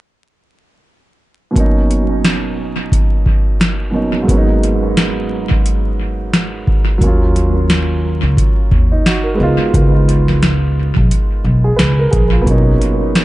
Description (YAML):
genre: hip hop, boom-bap hip-hop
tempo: 88 BPM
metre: 4/4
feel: swing 58% on 16ths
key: unclear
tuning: A4 = 442 Hz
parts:
  - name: dark concert grand piano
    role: accompaniment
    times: 1.5-13.2 s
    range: Ab2 to Cb5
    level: -18 LUFS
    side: right 2 dB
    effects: cassette tape, high-pass filter, low-pass filter, analog delay
  - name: booming analog drum machine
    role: drums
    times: 1.6-13.2 s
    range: hi-hat, kick drum, snare drum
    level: -14 LUFS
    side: equal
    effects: overdrive, analog delay
  - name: upright bass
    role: bass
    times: 7.0-12.7 s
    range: Bb1 to Eb2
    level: -14 LUFS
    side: equal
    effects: none
room: studio ambience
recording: echo-heavy mix, vinyl crackle, nothing above 10.9 kHz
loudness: -12 LUFS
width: side -17 dB against mid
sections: 1.6-12.5 A section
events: none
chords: 1.6 Bmaj7; 7.0 Ebm7; 9.4 Db7; 12.5 Bmaj7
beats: | 1.56 2.24 2.92 3.60 | 4.29 4.97 5.65 6.33 | 7.01 7.69 8.38 9.06 | 9.74 10.42 11.10 11.79 | 12.47 13.15